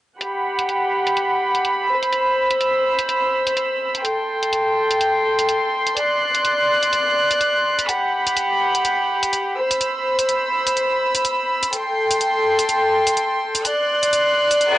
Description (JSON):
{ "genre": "piano house", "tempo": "125 BPM", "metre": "4/4", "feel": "swing 58% on 16ths", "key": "G major", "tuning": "A4 = 443 Hz", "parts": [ { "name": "warm studio violin section", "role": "sustained chords", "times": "0.2-14.8 s", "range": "G4 to F#6", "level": "-17 LUFS", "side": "equal", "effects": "low-pass filter, cassette tape" }, { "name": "electronic hi-hat", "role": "drums", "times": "0.2-14.7 s", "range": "none", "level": "-23 LUFS", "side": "equal", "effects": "low-pass filter on hats, cassette tape" }, { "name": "reverse cymbal", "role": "sound effects", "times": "14.7-14.8 s", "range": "none", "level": "-18 LUFS", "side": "left 4 dB", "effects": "none" } ], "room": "moderate spring reverb, RT60 1.8 s, studio ambience", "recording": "home recording on cassette, nothing above 10.5 kHz", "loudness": "-17 LUFS", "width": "side -15 dB against mid", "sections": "0.2-14.8 A section", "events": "reverse cymbal 14.7", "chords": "0.2 Gmaj7; 1.9 Cmaj7; 4.0 Am7; 6.0 D7; 7.9 Gmaj7; 9.6 Cmaj7; 11.7 Am7; 13.6 D7" }